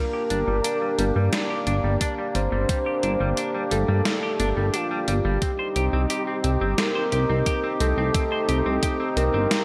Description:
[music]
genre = synthwave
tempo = 88 BPM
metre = 4/4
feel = straight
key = G minor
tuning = A4 = 440 Hz
[part]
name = soft octave-layered synth lead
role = melody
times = 0.0-9.6 s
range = F4 to D5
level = -30 LUFS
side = equal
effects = chorus, diffuse ambient delay
[part]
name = chorused pulse-width pad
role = sustained chords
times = 0.0-9.6 s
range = Bb3 to G4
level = -30 LUFS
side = equal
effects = sidechain pumping
[part]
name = clean electric guitar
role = riff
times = 0.0-9.6 s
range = G3 to C5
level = -34 LUFS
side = equal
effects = subtle chorus, low-pass filter, tape echo
[part]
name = chorused synth bass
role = bass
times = 0.3-9.5 s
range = G1 to G2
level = -26 LUFS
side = equal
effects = none
[part]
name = gated 80s digital drum machine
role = drums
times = 0.3-9.6 s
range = hi-hat, snare drum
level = -30 LUFS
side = equal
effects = gated reverb, gated reverb snare
[part]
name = electronic kick drum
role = drums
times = 2.0-9.0 s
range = none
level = -28 LUFS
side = equal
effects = none
[sound]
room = moderate plate reverb, RT60 2.4 s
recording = dreamy mix soaked in reverb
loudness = -23 LUFS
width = mono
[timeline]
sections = 0.0-9.6 A section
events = none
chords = 0.0 Gm; 5.4 Cm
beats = 0.65 1.33 2.01 | 2.69 3.37 4.05 4.74 | 5.42 6.10 6.78 7.46 | 8.15 8.83 9.51

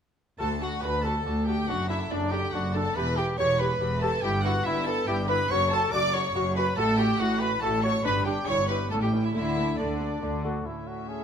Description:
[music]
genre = classical, baroque-style concerto movement with solo episodes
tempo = 141 BPM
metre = 3/4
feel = straight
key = D major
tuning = A4 = 441 Hz
[part]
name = mellow trumpet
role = melody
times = 0.4-11.2 s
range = D4 to D5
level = -30 LUFS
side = left 1 dB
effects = none
[part]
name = warm chamber violin section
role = melody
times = 0.4-11.2 s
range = C#5 to D6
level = -34 LUFS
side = equal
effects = none
[part]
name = rich chamber violin section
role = second line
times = 0.4-11.2 s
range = D4 to E5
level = -32 LUFS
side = right 1 dB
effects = none
[part]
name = dark chamber viola section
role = accompaniment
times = 0.4-11.2 s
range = A3 to G4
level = -35 LUFS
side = left 2 dB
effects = none
[part]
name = lute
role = accompaniment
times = 0.4-11.2 s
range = D2 to F#5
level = -36 LUFS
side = right 1 dB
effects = none
[part]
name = rich chamber double bass section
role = bass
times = 0.4-10.6 s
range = E1 to D2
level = -32 LUFS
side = equal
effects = none
[part]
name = warm chamber cello section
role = bass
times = 0.4-11.2 s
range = D2 to D3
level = -31 LUFS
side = equal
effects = none
[sound]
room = wet stone room reverb, RT60 1.0 s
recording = none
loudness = -24 LUFS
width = side -8 dB against mid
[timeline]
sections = 0.4-10.7 A section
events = none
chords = 0.4 D; 1.7 D/F#; 3.0 Em; 4.2 Em/G; 5.5 F#5; 6.8 F#m/A; 8.0 G; 8.5 Em/G; 8.9 A7; 9.3 D5; 10.7 A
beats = | 0.40 0.83 1.26 | 1.69 2.11 2.54 | 2.96 3.39 3.81 | 4.23 4.66 5.08 | 5.50 5.93 6.35 | 6.77 7.19 7.62 | 8.04 8.47 8.91 | 9.35 9.79 10.22 | 10.66 11.09

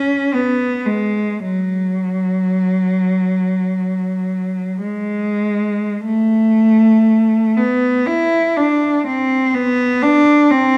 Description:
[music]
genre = classical, free, expressive piece for unaccompanied cello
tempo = 42-63 BPM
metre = 4/4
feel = rubato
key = unclear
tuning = A4 = 441 Hz
[part]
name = clear cello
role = solo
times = 0.0-10.8 s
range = F#3 to E4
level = -16 LUFS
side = equal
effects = none
[sound]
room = moderate recital hall reverb, RT60 1.7 s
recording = dark, warm production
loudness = -16 LUFS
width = mono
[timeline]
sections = 0.0-6.0 A section; 6.0-10.8 B section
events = none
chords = none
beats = 0.34 | 1.40 2.52 3.69 4.82 | 6.04 7.05 8.06 9.06 | 10.03

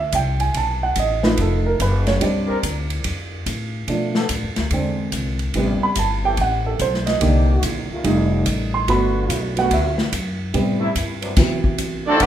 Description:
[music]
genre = jazz, big band swing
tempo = 144 BPM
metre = 4/4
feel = swing 65% on 8ths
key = G major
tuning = A4 = 441 Hz
[part]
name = dark baby grand piano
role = accompaniment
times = 0.0-12.0 s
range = C3 to C6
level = -21 LUFS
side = right 3 dB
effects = none
[part]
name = upright bass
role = bass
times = 0.0-12.3 s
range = E#1 to B2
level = -22 LUFS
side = left 1 dB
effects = none
[part]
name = swinging big-band drum kit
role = drums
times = 0.1-12.3 s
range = crash cymbal, hi-hat, kick drum, ride cymbal, snare drum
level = -25 LUFS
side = equal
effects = none
[part]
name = mellow trombone section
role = sustained chords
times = 2.5-11.3 s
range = D2 to Bb4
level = -28 LUFS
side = left 1 dB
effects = none
[part]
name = bright trumpet section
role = melody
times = 12.1-12.3 s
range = C4 to F#5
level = -15 LUFS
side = left 1 dB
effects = none
[part]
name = bright trombone section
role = second line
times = 12.1-12.3 s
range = F#3 to F#4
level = -18 LUFS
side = right 3 dB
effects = none
[sound]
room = moderate recital hall reverb, RT60 1.4 s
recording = minimal, uncompressed stereo recording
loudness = -18 LUFS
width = side -10 dB against mid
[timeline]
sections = 0.0-12.2 A section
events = grand piano solo 0.0-12.2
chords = 0.0 G5; 0.6 B7#11; 2.2 Bb69; 3.9 Bm7b5; 4.7 E7b13; 5.5 Am7; 7.2 Cm7; 8.0 F9; 8.9 Gmaj7; 10.5 Am7; 11.4 D13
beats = 0.13 | 0.55 0.97 1.38 1.80 | 2.22 2.63 3.05 3.46 | 3.88 4.30 4.71 5.13 | 5.55 5.96 6.38 6.79 | 7.21 7.63 8.04 8.46 | 8.88 9.29 9.71 10.13 | 10.54 10.96 11.38 11.79 | 12.21

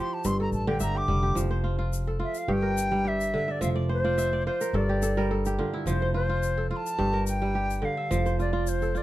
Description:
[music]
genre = west african traditional, West African string and xylophone music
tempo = 107 BPM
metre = 4/4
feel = straight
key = F major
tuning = A4 = 440 Hz
[part]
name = bright wooden flute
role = melody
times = 0.0-9.0 s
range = C5 to D6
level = -30 LUFS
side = left 1 dB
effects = none
[part]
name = kora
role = arpeggios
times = 0.0-9.0 s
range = G2 to E5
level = -28 LUFS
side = right 2 dB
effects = none
[part]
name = upright bass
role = bass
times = 0.2-9.0 s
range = F1 to A1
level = -29 LUFS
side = equal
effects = none
[part]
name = tube shaker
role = percussion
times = 0.2-9.0 s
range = none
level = -41 LUFS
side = left 8 dB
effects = none
[sound]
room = light reverb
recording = dark, warm production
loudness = -24 LUFS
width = side -15 dB against mid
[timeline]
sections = 0.0-1.4 A section; 1.4-9.0 B section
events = flute solo 0.0-1.4; kora fill 3.6-5.9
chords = 0.2 G5; 1.4 F; 2.5 Gm; 3.6 F5; 4.7 G5; 5.9 F; 7.0 Gm; 8.1 F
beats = 0.25 0.81 | 1.37 1.93 2.50 3.06 | 3.62 4.18 4.74 5.30 | 5.87 6.43 6.99 7.55 | 8.11 8.67

